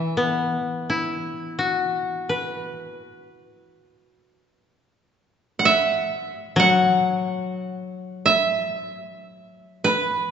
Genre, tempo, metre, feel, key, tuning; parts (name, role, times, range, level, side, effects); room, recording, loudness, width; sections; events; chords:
japanese traditional, Japanese chamber music; free time; A4 = 439 Hz
koto; melody; 0.0-10.3 s; B4 to F#5; -20 LUFS; right 4 dB
koto; accompaniment; 0.0-9.9 s; E3 to B4; -22 LUFS; left 4 dB
wet concert hall reverb, RT60 2.1 s; recorded in a church or concert hall, nothing above 7.7 kHz; -20 LUFS; side -7 dB against mid
0.0-10.3 A section